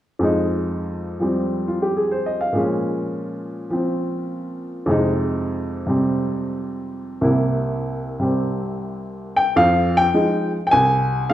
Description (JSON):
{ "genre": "jazz", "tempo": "103 BPM", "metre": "4/4", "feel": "swing 69% on 8ths", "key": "F minor", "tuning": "A4 = 440 Hz", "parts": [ { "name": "warm upright piano", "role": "solo", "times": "0.2-11.3 s", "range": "C2 to Ab5", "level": "-19 LUFS", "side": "equal", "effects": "none" } ], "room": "wet recital hall reverb, RT60 1.6 s", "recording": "recorded in a church or concert hall", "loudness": "-19 LUFS", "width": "side -12 dB against mid", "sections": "0.2-9.5 A section; 9.5-11.3 B section", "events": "none", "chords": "0.2 Fm7; 2.5 Bbm7; 4.9 Fm7; 7.2 C7; 9.5 Fm7" }